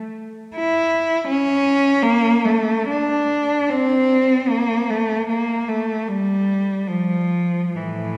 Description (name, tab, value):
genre	classical, free, expressive piece for unaccompanied cello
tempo	75 BPM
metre	3/4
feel	uneven beats, rubato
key	unclear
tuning	A4 = 440 Hz
part	rich cello	solo	0.6-8.2 s	A2 to E4	-20 LUFS	equal	none
room	wet concert hall reverb, RT60 2.3 s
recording	heard from further back in the room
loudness	-20 LUFS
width	mono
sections	0.0-8.2 A section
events	none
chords	none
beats	| 0.54 1.27 2.03 | 2.90 3.71 4.50 | 5.29 6.08 6.88 | 7.76